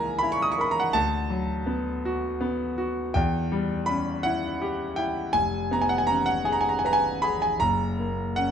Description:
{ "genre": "classical, romantic nocturne for solo piano", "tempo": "51-57 BPM (dotted quarters)", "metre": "12/8", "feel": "rubato", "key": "unclear", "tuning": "A4 = 440 Hz", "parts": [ { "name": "clear grand piano", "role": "solo", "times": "0.0-8.5 s", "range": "E#1 to D#6", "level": "-23 LUFS", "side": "equal", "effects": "none" } ], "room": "light reverb", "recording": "close, detailed microphones", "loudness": "-23 LUFS", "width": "side -8 dB against mid", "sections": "0.0-8.5 A section", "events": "none", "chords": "0.0 A#dim/C#; 0.9 Bm/D; 3.1 C#dim/E; 5.3 C#7/E#; 7.6 F#" }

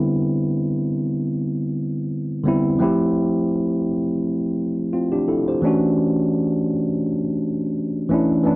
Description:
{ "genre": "R&B", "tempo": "85 BPM", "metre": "4/4", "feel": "swing 55% on 16ths", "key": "unclear", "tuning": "A4 = 440 Hz", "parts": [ { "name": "tine electric piano", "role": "solo", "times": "0.0-8.6 s", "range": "D3 to C5", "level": "-18 LUFS", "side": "equal", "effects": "none" } ], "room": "light reverb", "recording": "dry, close 1970s-style studio recording", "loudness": "-19 LUFS", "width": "side -22 dB against mid", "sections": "0.0-8.6 A section", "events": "none", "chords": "0.0 Cmaj9; 2.8 Fmaj9; 5.6 Dmaj9" }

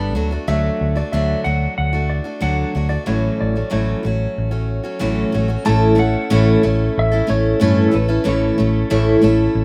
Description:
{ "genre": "folk rock and heartland rock", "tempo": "93 BPM", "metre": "4/4", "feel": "straight", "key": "unclear", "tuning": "A4 = 439 Hz", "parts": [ { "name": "picked steel-string acoustic guitar", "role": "accompaniment", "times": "0.0-9.6 s", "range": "A2 to A4", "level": "-20 LUFS", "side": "equal", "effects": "none" }, { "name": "hollow-body short-scale fingered electric bass", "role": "bass", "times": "0.0-9.6 s", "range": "G1 to G2", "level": "-22 LUFS", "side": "equal", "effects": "none" }, { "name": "clean lap steel guitar", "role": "melody", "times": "0.5-9.6 s", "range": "A4 to A5", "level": "-27 LUFS", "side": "equal", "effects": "analog delay" } ], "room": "light reverb, small room ambience", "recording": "rough home demo mix", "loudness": "-18 LUFS", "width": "mono", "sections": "0.0-5.7 A section; 5.7-9.6 B section", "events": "none", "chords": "0.2 D; 3.1 A6; 5.7 A" }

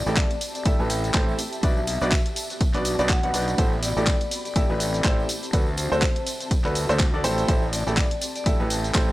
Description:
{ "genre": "piano house", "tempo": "123 BPM", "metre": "4/4", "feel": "swing 57% on 16ths", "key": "A dorian", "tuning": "A4 = 440 Hz", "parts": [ { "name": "vibraphone with medium mallets", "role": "melody", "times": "0.0-8.8 s", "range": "C5 to G5", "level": "-32 LUFS", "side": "left 3 dB", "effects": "tape echo" }, { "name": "fuzz fingered electric bass", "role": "bass", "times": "0.0-9.1 s", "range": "A1 to D2", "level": "-29 LUFS", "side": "equal", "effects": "overdrive, sidechain pumping" }, { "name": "ethereal airy pad", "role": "texture", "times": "0.0-9.1 s", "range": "B3 to B5", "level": "-36 LUFS", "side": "equal", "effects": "ensemble chorus, built-in reverb, tremolo, sidechain pumping" }, { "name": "warm upright piano", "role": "riff", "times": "0.1-9.1 s", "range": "B2 to F#5", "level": "-27 LUFS", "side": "right 1 dB", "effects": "sidechain pumping" }, { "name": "garage drum kit", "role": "drums", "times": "0.1-9.1 s", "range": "handclaps, hi-hat, ride cymbal, shaker", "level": "-29 LUFS", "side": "equal", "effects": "studio reverb" }, { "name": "tambourine", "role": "percussion", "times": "0.1-9.1 s", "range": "none", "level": "-37 LUFS", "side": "right 1 dB", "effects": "none" }, { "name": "electronic kick drum", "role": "drums", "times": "0.2-9.1 s", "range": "none", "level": "-23 LUFS", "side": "equal", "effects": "studio reverb" } ], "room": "digital ambience", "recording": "dry, gritty hardware recording", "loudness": "-21 LUFS", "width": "side -17 dB against mid", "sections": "0.0-9.1 A section", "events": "none", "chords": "0.0 Am7; 1.6 Bm; 3.6 Am7; 5.5 D7; 7.2 Am7" }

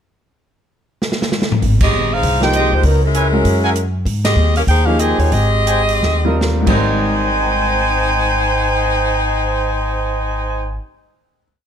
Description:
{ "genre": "jazz, big band swing", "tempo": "138-198 BPM", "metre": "4/4", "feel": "swing 62% on 8ths", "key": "Ab major", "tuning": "A4 = 437 Hz", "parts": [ { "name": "swinging big-band drum kit", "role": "drums", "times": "1.0-6.7 s", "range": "crash cymbal, hi-hat, kick drum, ride cymbal, snare drum, toms", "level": "-20 LUFS", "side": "equal", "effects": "none" }, { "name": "upright bass", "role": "bass", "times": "1.6-10.8 s", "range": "G1 to Ab2", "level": "-18 LUFS", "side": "equal", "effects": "none" }, { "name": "clear saxophone section", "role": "melody", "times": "1.8-10.8 s", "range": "Gb3 to Ab5", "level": "-18 LUFS", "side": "left 1 dB", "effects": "none" }, { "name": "bright concert grand piano", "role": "accompaniment", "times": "2.4-11.7 s", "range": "Ab2 to Eb7", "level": "-20 LUFS", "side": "equal", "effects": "none" }, { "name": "warm trumpet section", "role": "stabs", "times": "2.4-10.8 s", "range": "Bb4 to Ab5", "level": "-21 LUFS", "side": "right 2 dB", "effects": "none" } ], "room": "little or no reverb", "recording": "close, detailed microphones", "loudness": "-13 LUFS", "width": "side -8 dB against mid", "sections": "0.4-1.6 pickup bar; 1.6-6.8 A section; 6.8-10.3 final chord", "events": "drum fill 1.0-1.6, 6.0-6.8; band accent 1.8, 4.2; slowing down 4.1-6.8", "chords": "0.4 N.C.; 1.6 Abmaj7; 2.8 Dbm7; 3.5 Gb9; 4.1 Abmaj7" }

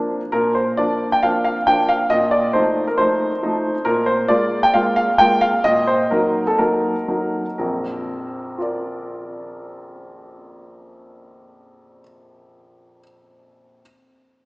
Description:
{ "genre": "classical-period piano sonatina", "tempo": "118-140 BPM", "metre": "4/4", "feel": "rubato", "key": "Bb major", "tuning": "A4 = 439 Hz", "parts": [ { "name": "clear grand piano", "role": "solo", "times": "0.0-13.8 s", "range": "Bb1 to G5", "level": "-17 LUFS", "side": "equal", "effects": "none" } ], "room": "wet church reverb, RT60 2.7 s", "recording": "recorded in a church or concert hall, small speaker sound", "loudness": "-16 LUFS", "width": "side -24 dB against mid", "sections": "0.3-7.6 A section; 7.6-11.5 B section", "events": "slowing down 3.0-7.6", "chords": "0.3 Bb; 2.1 F7/Bb; 3.9 Bb5; 5.7 Ebm/Bb; 7.6 Bb" }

